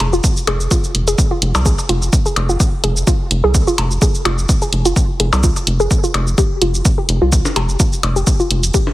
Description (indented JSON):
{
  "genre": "minimal techno",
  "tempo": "127 BPM",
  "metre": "4/4",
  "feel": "swing 55% on 16ths",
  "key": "F minor",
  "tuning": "A4 = 439 Hz",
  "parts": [
    { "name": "rubbery square bass", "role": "bass", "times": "0.0-8.7 s", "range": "F1 to C2", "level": "-17 LUFS", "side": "equal", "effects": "sidechain pumping" },
    { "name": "electronic hi-hat and shaker", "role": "drums", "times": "0.0-8.8 s", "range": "none", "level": "-21 LUFS", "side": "right 1 dB", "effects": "none" },
    { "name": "percussion blips", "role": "percussion", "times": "0.0-8.9 s", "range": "none", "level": "-22 LUFS", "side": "left 2 dB", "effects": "digital delay" },
    { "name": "hollow square pluck", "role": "riff", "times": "0.1-8.8 s", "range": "F4 to Ab4", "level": "-20 LUFS", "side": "equal", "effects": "chorus, phaser, sidechain pumping, dub echo" },
    { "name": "electronic kick drum", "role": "drums", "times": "0.2-8.8 s", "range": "none", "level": "-15 LUFS", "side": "equal", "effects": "none" }
  ],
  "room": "light reverb",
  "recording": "heavily compressed radio sound",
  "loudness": "-13 LUFS",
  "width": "side -16 dB against mid",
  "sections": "0.0-8.9 A section",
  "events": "filter sweep on synth arpeggio sound 0.0-8.9",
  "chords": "0.0 Fm"
}